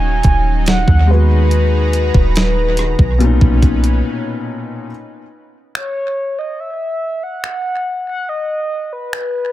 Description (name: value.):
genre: contemporary R&B.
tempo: 71 BPM.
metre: 4/4.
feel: straight.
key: B major.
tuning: A4 = 437 Hz.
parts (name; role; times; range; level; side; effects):
mellow horn-like synth lead; melody; 0.0-9.5 s; B4 to G#5; -20 LUFS; equal; chorus, analog delay.
felt-muted upright piano; accompaniment; 0.0-4.9 s; A#2 to F#4; -21 LUFS; left 6 dB; analog delay.
lush unison pad; sustained chords; 0.0-4.9 s; D#3 to A#5; -24 LUFS; left 1 dB; chorus.
soft 808-style bass; bass; 0.0-4.0 s; D#1 to D#2; -14 LUFS; equal; none.
clean 12-bit digital drum machine; drums; 0.2-9.3 s; finger snaps, hi-hat, kick drum, rim click, snare drum; -15 LUFS; equal; none.
room: digital ambience.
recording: echo-heavy mix.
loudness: -13 LUFS.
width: side -14 dB against mid.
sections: 0.0-4.9 A section; 4.9-9.5 B section.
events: break 4.0-4.9, 4.9-9.5.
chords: 0.0 D#m7; 1.1 G#m9/D#; 3.2 Bmaj9; 4.9 N.C..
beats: 0.67 | 1.51 2.36 3.20 4.05 | 4.89 5.74 6.58 7.43 | 8.27 9.12.